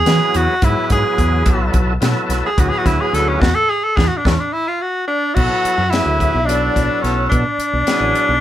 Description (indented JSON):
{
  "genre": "electric jazz fusion",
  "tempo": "216 BPM (eighths)",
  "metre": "7/8",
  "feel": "straight",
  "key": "B dorian",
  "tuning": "A4 = 437 Hz",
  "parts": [
    { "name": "bright tenor saxophone", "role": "melody", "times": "0.0-8.4 s", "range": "C#4 to A4", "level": "-17 LUFS", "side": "equal", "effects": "none" },
    { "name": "fingered electric bass", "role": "bass", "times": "0.0-8.4 s", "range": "A1 to E3", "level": "-19 LUFS", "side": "equal", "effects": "none" },
    { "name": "overdriven tonewheel organ", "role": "accompaniment", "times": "0.1-8.3 s", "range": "F#3 to A4", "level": "-22 LUFS", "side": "equal", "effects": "slow rotary speaker" },
    { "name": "tight funk drum kit", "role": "drums", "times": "0.1-8.3 s", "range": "crash cymbal, hi-hat, kick drum, snare drum", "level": "-20 LUFS", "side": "equal", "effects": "none" },
    { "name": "bright concert flute", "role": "second line", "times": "5.1-8.4 s", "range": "C#5 to F#5", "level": "-24 LUFS", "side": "equal", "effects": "none" }
  ],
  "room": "light reverb",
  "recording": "band playing live in one room",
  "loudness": "-14 LUFS",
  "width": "side -12 dB against mid",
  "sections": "0.0-5.4 A section; 5.4-8.4 B section",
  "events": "tenor saxophone solo 0.0-5.4; drum fill 3.4-5.4; band accent 3.4-5.4",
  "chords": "0.0 E; 1.5 Bm7; 3.4 E5; 5.4 Bm7"
}